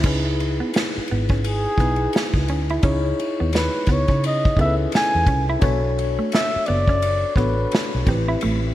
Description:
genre	R&B, neo-soul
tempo	86 BPM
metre	4/4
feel	swing 59% on 16ths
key	unclear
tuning	A4 = 440 Hz
part	clean electric guitar	second line	0.0-8.6 s	A3 to E4	-29 LUFS	right 3 dB	none
part	mellow tine electric piano	accompaniment	0.0-8.7 s	C4 to C#5	-26 LUFS	left 2 dB	slow stereo tremolo
part	vintage muted fingered electric bass	bass	0.0-8.7 s	F#1 to C#3	-22 LUFS	equal	none
part	unplugged drum kit	drums	0.0-8.6 s	crash cymbal, kick drum, ride cymbal, snare drum	-23 LUFS	equal	gated reverb
part	trumpet with bucket mute	melody	1.5-8.1 s	G#4 to G#5	-24 LUFS	equal	none
room	light reverb, small room ambience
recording	bright 1980s-style digital production, vinyl crackle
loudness	-18 LUFS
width	side -14 dB against mid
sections	0.0-8.7 A section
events	none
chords	0.0 C#m9; 5.6 Bm9; 8.1 Am9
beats	| 0.04 0.74 1.44 2.13 | 2.83 3.53 4.23 4.93 | 5.62 6.32 7.02 7.72 | 8.41

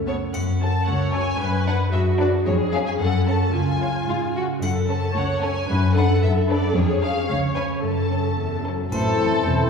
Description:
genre	cinematic, playful, whimsical film cue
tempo	112 BPM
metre	2/4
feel	straight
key	F# minor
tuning	A4 = 441 Hz
part	dark clarinet	second line	0.0, 8.9-9.7 s	A4	-32 LUFS	left 2 dB	none
part	concert harp	arpeggios	0.0-9.7 s	E#2 to C#5	-24 LUFS	left 2 dB	none
part	rich studio cello section	bass	0.0-9.7 s	C#2 to A2	-25 LUFS	equal	none
part	warm studio double bass section	bass	0.0-0.2, 8.9-9.7 s	E1 to C#2	-29 LUFS	right 2 dB	none
part	rich studio violin section	melody	0.1-9.4 s	C#5 to A5	-29 LUFS	left 3 dB	none
part	rich studio violin section	second line	0.1-9.7 s	C#4 to C#5	-29 LUFS	left 1 dB	none
part	rich studio viola section	accompaniment	0.1-9.4 s	A3 to C#5	-26 LUFS	equal	none
part	triangle	percussion	0.3-1.4, 4.6-5.7, 8.9-9.7 s	none	-42 LUFS	left 1 dB	none
part	glockenspiel with hard plastic mallets	melody	8.9-9.7 s	A5	-32 LUFS	left 5 dB	none
part	warm cor anglais	second line	8.9-9.7 s	C5	-30 LUFS	equal	none
part	mellow bassoon	accompaniment	8.9-9.7 s	E3	-28 LUFS	equal	none
part	warm French horn section	sustained chords	8.9-9.7 s	C4 to E4	-27 LUFS	left 3 dB	none
room	wet scoring stage reverb, RT60 1.5 s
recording	heard from further back in the room, small room reverb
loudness	-19 LUFS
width	side -6 dB against mid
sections	0.3-8.9 A section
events	none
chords	0.3 F#m; 1.4 G#m7b5/F#; 2.5 C#/E#; 3.0 F#m; 3.5 C#; 4.6 F#m; 5.7 D6/F#; 6.8 C#/E#; 7.3 C#7(no3); 7.8 F#m; 8.9 Am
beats	| 0.34 0.88 | 1.41 1.94 | 2.47 3.00 | 3.54 4.08 | 4.62 5.15 | 5.69 6.22 | 6.75 7.29 | 7.83 8.38 | 8.92 9.46

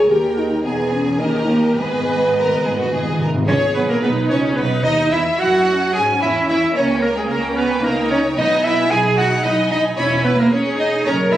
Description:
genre	quick classical-period movement for symphony orchestra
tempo	110 BPM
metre	3/4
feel	rubato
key	G# minor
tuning	A4 = 443 Hz
part	rich chamber violin section	melody	0.0-11.3 s	A#4 to B5	-29 LUFS	left 1 dB	none
part	clear chamber violin section	second line	0.0-11.4 s	F#4 to G#5	-25 LUFS	left 1 dB	none
part	rich symphonic viola section	accompaniment	0.0-11.4 s	A#3 to C#5	-23 LUFS	right 1 dB	none
part	dark French horn section	sustained chords	0.0-2.9 s	A#3 to G4	-18 LUFS	equal	none
part	rich chamber double bass section	bass	0.0-11.4 s	E1 to G#2	-25 LUFS	right 2 dB	none
part	rich symphonic cello section	bass	0.0-11.4 s	C#2 to G#4	-20 LUFS	right 2 dB	none
part	timpani	percussion	0.1-3.4, 8.4-9.1 s	G#2 to D#3	-26 LUFS	equal	none
part	warm clarinet	second line	3.5-11.4 s	G#4 to G#5	-20 LUFS	equal	none
room	wet scoring stage reverb, RT60 1.5 s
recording	recorded on a phone in the room, club reverb, compression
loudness	-15 LUFS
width	side -12 dB against mid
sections	0.0-3.5 A section; 3.5-11.4 A section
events	timpani fill 1.8-3.5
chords	0.1 D#; 0.6 E; 1.2 D#; 1.8 G#m; 5.1 C#m/E; 6.8 D#7/C#; 8.4 G#m/B; 10.0 C#m7/E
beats	| 0.10 0.64 1.19 | 1.77 2.34 2.91 | 3.48 4.03 4.57 | 5.12 5.67 6.21 | 6.75 7.29 7.84 | 8.38 8.91 9.45 | 9.98 10.52 11.05

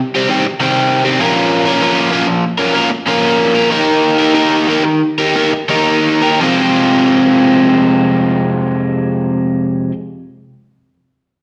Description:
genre	rock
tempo	83-99 BPM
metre	4/4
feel	straight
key	F minor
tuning	A4 = 440 Hz
part	overdriven electric guitar	solo	0.1-9.9 s	F2 to Bb4	-13 LUFS	equal	none
room	wet recital hall reverb, RT60 1.3 s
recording	recorded in a church or concert hall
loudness	-13 LUFS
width	mono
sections	0.0-6.4 A section; 6.4-9.3 B section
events	slowing down 1.2-6.4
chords	0.0 Cm; 1.2 Bbm; 3.7 Eb; 6.4 Fm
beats	0.60 | 1.21 1.82 2.44 3.06 | 3.70 4.35 5.01 5.70 | 6.41 7.13 7.84 8.56

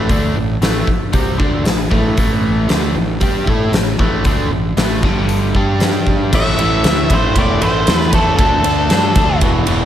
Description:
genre	classic rock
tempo	116 BPM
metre	4/4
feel	straight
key	A minor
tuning	A4 = 439 Hz
part	overdriven electric guitar	riff	0.0-9.9 s	E2 to A4	-18 LUFS	equal	slapback echo
part	fuzz fingered electric bass	bass	0.0-9.9 s	E1 to A2	-20 LUFS	equal	overdrive
part	huge arena drum kit	drums	0.1-9.8 s	crash cymbal, hi-hat, kick drum, ride cymbal, snare drum	-16 LUFS	equal	none
part	octave-fuzz lead guitar	melody	6.4-9.4 s	A4 to E5	-18 LUFS	equal	distortion
room	light reverb, small room ambience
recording	none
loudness	-12 LUFS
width	side -10 dB against mid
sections	0.0-6.3 A section; 6.3-9.9 B section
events	none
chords	0.0 Am; 5.0 G5; 6.3 Am; 8.4 D5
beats	| 0.10 0.62 1.14 1.66 | 2.18 2.70 3.22 3.73 | 4.25 4.77 5.29 5.81 | 6.33 6.84 7.36 7.88 | 8.39 8.91 9.43

